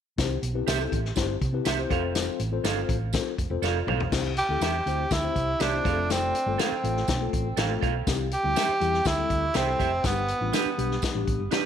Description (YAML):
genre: uptempo 1960s-style soul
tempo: 122 BPM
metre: 4/4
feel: straight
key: C major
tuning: A4 = 440 Hz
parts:
  - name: mellow tine electric piano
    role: accompaniment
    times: 0.2-11.6 s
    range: G3 to D5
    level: -32 LUFS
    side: left 9 dB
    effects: medium stereo tremolo
  - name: hollow-body short-scale fingered electric bass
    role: bass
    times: 0.2-11.6 s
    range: E1 to C3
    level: -30 LUFS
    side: right 1 dB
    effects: none
  - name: vintage drum kit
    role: drums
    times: 0.2-11.6 s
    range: crash cymbal, hi-hat, kick drum, snare drum, toms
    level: -29 LUFS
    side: left 3 dB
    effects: none
  - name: tambourine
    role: percussion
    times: 0.2-11.6 s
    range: none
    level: -39 LUFS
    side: right 14 dB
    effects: none
  - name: electric guitar through a small old amp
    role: stabs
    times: 0.7-11.7 s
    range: D4 to F5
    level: -31 LUFS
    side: right 15 dB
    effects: spring reverb
  - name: breathy tenor saxophone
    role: melody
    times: 4.4-11.2 s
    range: B3 to G4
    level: -27 LUFS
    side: right 1 dB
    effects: tape echo
room: light reverb, studio ambience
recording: 1960s-style stereo with parts hard left and right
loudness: -24 LUFS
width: side -8 dB against mid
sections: 0.2-4.1 A section; 4.1-11.7 B section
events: drum fill 3.6-4.1; tine electric piano fill 11.3-11.7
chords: 0.2 C; 1.9 F; 4.1 C; 5.9 F; 8.1 C; 10.0 G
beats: | 0.18 0.68 1.17 1.66 | 2.15 2.65 3.14 3.63 | 4.12 4.62 5.11 5.60 | 6.10 6.59 7.08 7.58 | 8.07 8.56 9.06 9.55 | 10.04 10.54 11.03 11.52